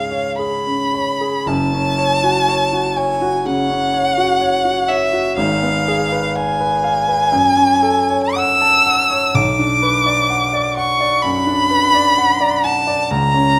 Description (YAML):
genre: classical, romantic duo for violin and grand piano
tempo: 62 BPM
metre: 4/4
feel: uneven beats, rubato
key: F# minor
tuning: A4 = 440 Hz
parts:
  - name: warm violin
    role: melody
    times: 0.0-13.6 s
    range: E5 to E6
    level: -18 LUFS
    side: equal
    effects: none
  - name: warm concert grand piano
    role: accompaniment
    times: 0.0-13.6 s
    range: F#1 to A5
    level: -21 LUFS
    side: equal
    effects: none
room: moderate recital hall reverb, RT60 1.4 s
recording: none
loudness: -16 LUFS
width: mono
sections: 0.0-1.5 A section; 1.5-13.6 B section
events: none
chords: 0.0 C#; 1.5 F#m; 5.4 Fdim/Ab; 7.3 F#m; 9.3 Bm